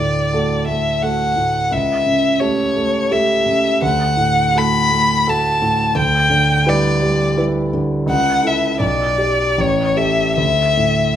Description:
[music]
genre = classical, romantic duo for violin and grand piano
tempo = 74-88 BPM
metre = 3/4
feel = rubato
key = D major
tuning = A4 = 440 Hz
[part]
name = rich violin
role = melody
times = 0.0-11.2 s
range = C#5 to B5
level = -16 LUFS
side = left 2 dB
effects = none
[part]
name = warm concert grand piano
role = accompaniment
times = 0.0-11.2 s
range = A1 to D5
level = -18 LUFS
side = right 2 dB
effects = none
[sound]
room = moderate recital hall reverb, RT60 1.4 s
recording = minimal, uncompressed stereo recording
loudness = -14 LUFS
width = side -10 dB against mid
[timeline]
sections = 0.0-11.2 A section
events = none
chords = 0.0 D; 1.7 A7/C#; 3.8 D; 6.0 Em7/D; 8.1 A/C#; 8.8 G/B; 9.6 A7; 10.4 D5

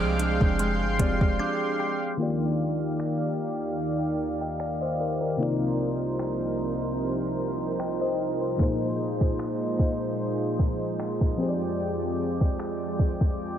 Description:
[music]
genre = contemporary R&B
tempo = 75 BPM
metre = 4/4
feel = swing 54% on 16ths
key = F dorian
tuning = A4 = 441 Hz
[part]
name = mellow FM electric piano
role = accompaniment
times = 0.0-13.6 s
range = Bb2 to G5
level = -30 LUFS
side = left 2 dB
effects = chorus
[part]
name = lush unison pad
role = sustained chords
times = 0.0-13.6 s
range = C2 to D6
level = -28 LUFS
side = right 1 dB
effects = chorus, sidechain pumping
[part]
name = electric guitar with an envelope filter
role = arpeggios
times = 0.0-2.8 s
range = F3 to G4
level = -32 LUFS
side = right 5 dB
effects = analog delay
[part]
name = soft 808-style bass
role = bass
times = 0.0-1.4 s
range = F1 to C2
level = -29 LUFS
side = equal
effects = none
[part]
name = smooth R&B drum kit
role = drums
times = 0.2-13.4 s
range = finger snaps, hi-hat, kick drum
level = -25 LUFS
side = equal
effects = none
[part]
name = mallet-like synth pluck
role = texture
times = 1.4-2.6 s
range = G6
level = -40 LUFS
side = left 3 dB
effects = chorus, analog delay
[sound]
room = wet lush hall reverb, RT60 2.9 s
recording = dreamy mix soaked in reverb, low-pass filter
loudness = -24 LUFS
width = side -9 dB against mid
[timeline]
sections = 0.0-2.2 A section; 2.2-13.6 B section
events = break 1.4-2.2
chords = 0.0 Fm69; 2.2 Ebmaj9; 5.4 Cm11; 8.6 Bb9sus4; 11.4 Fm69

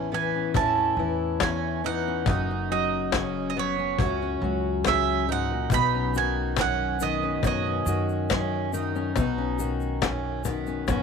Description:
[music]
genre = acoustic folk duo or small band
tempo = 70 BPM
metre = 4/4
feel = straight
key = unclear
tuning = A4 = 440 Hz
[part]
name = bowl-back mandolin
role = second line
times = 0.0-11.0 s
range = C#5 to B5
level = -28 LUFS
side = right 12 dB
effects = none
[part]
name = fingerpicked steel-string acoustic guitar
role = accompaniment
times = 0.0-11.0 s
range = E2 to F#4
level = -29 LUFS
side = left 10 dB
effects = none
[part]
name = fingerpicked twelve-string acoustic guitar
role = arpeggios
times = 0.0-11.0 s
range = B3 to D#4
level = -33 LUFS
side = right 11 dB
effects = none
[part]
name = upright bass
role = bass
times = 0.0-11.0 s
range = F#1 to F#2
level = -32 LUFS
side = right 1 dB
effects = none
[part]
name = cajon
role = percussion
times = 0.3-11.0 s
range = none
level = -28 LUFS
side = left 7 dB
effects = none
[part]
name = soft brush drum kit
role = drums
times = 0.6-11.0 s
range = kick drum, snare drum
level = -30 LUFS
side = equal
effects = none
[part]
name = egg shaker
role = percussion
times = 5.7-11.0 s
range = none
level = -42 LUFS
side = left 12 dB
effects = none
[sound]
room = light reverb, studio ambience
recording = 1960s-style stereo with parts hard left and right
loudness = -23 LUFS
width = side -6 dB against mid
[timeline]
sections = 0.0-11.0 A section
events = mandolin solo 0.0-11.0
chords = 0.0 Aadd9; 2.3 F#5; 5.7 Badd9

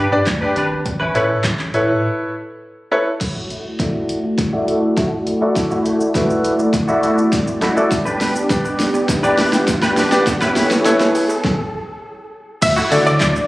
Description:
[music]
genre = dance-pop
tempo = 102 BPM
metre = 4/4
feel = straight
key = D major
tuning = A4 = 440 Hz
[part]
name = direct-recorded clean electric guitar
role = riff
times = 0.0-13.4 s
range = A3 to B4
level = -22 LUFS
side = right 1 dB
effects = ensemble chorus, low-pass filter
[part]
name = saturated sub bass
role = bass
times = 0.0-1.9, 12.6-13.4 s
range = G#1 to D3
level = -22 LUFS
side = equal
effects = sidechain pumping
[part]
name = clear concert grand piano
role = accompaniment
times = 0.1-13.3 s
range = D4 to D5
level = -19 LUFS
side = left 1 dB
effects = sidechain pumping, low-pass filter
[part]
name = deep house drum kit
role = drums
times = 0.3-13.5 s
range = crash cymbal, handclaps, hi-hat, kick drum, shaker, snare drum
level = -20 LUFS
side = equal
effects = none
[part]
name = warm analog pad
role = sustained chords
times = 3.2-13.5 s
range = E3 to D5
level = -20 LUFS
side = equal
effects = chorus, sidechain pumping, low-pass filter
[part]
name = riser and downlifter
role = sound effects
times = 7.4-13.5 s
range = none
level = -28 LUFS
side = equal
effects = none
[part]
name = tube shaker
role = percussion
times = 7.9-13.5 s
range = none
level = -38 LUFS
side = left 1 dB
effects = none
[part]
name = analog pluck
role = melody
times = 12.6-13.4 s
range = D5 to E5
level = -18 LUFS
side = equal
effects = chorus, sidechain pumping
[sound]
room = moderate lush hall reverb, RT60 1.9 s, digital ambience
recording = recorded on a phone in the room, club reverb, compression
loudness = -15 LUFS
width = side -18 dB against mid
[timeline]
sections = 0.0-3.2 A section; 3.2-12.6 B section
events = break 2.0-3.2; build-up 3.2-12.6; drum fill 3.2-11.4; filter sweep 3.2-12.6; riser 7.4-12.6; stop 11.4-12.6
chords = 0.0 G; 0.9 Aadd9; 3.2 Dadd9; 7.9 G; 10.3 Aadd9; 12.6 Dadd9

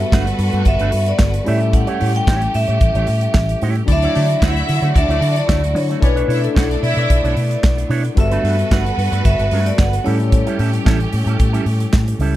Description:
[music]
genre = disco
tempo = 112 BPM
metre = 4/4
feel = straight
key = unclear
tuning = A4 = 440 Hz
[part]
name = vibraphone with medium hard mallets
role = melody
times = 0.0-10.5 s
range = A4 to G5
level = -22 LUFS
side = equal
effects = none
[part]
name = electric guitar with an envelope filter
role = accompaniment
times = 0.0-12.3 s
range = G3 to C#5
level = -26 LUFS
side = right 6 dB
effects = none
[part]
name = overdriven tine electric piano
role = accompaniment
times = 0.0-12.4 s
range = F#3 to D5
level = -25 LUFS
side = left 4 dB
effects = auto-pan
[part]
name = clear symphonic string section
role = sustained chords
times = 0.0-12.4 s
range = D3 to B4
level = -27 LUFS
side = right 2 dB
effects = none
[part]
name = vintage muted fingered electric bass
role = bass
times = 0.0-12.4 s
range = G1 to D3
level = -18 LUFS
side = equal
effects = none
[part]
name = modern studio drum kit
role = drums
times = 0.0-12.4 s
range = handclaps, hi-hat, kick drum, snare drum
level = -18 LUFS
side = equal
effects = none
[part]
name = clear studio string section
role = second line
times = 3.9-7.3 s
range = C#4 to F#5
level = -24 LUFS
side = left 2 dB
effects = none
[sound]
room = small room ambience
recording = dark, warm production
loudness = -14 LUFS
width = side -14 dB against mid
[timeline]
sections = 0.0-12.4 A section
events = none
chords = 0.0 Gmaj9; 1.5 A7; 3.9 Dmaj9; 6.0 Bm11; 8.2 Gmaj9; 10.1 A7

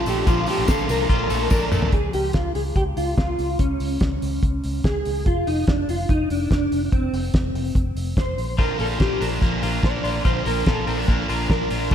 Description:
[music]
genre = jangly indie pop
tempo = 144 BPM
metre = 4/4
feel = straight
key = Bb major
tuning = A4 = 436 Hz
[part]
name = mellow electric guitar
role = melody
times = 0.0-11.9 s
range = C4 to D5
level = -25 LUFS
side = equal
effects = ensemble chorus, slapback echo
[part]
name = glockenspiel with rubber mallets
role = second line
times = 0.0-1.7 s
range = A5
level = -38 LUFS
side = right 1 dB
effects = slapback echo
[part]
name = crunchy overdriven guitar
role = accompaniment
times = 0.0-1.9, 8.6-11.9 s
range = Bb2 to Bb4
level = -27 LUFS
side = right 5 dB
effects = slapback echo
[part]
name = twelve-string electric guitar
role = arpeggios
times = 0.0-2.5, 8.6-11.9 s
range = F3 to F4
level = -28 LUFS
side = left 7 dB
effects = slapback echo
[part]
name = vintage muted fingered electric bass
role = bass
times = 0.0-11.9 s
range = F1 to Db2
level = -27 LUFS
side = equal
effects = none
[part]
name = cloth-damped thuddy drum kit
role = drums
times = 0.1-11.9 s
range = hi-hat, kick drum, ride cymbal, snare drum, toms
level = -23 LUFS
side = equal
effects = none
[part]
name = tambourine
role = percussion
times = 0.1-1.8 s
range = none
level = -41 LUFS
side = left 10 dB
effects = none
[sound]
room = light reverb, small room reverb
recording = none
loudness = -19 LUFS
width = side -9 dB against mid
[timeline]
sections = 0.0-1.9 A section; 1.9-11.9 B section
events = drum fill 1.5-1.9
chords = 0.0 Bbmaj7; 1.9 Db; 5.3 F5; 8.4 Bb

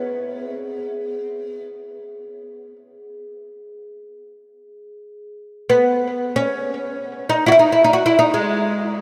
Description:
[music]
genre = world meditative, free-time meditation music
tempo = free time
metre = none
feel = none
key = G# minor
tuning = A4 = 441 Hz
[part]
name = oud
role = melody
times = 0.0-9.0 s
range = G#3 to F#4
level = -18 LUFS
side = equal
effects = delay
[part]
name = quartz singing bowl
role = texture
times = 0.0-4.7 s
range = G#4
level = -37 LUFS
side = equal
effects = none
[sound]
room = wet huge ambient reverb, RT60 6.4 s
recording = none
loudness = -19 LUFS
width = mono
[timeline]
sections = 0.0-9.0 A section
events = none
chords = none

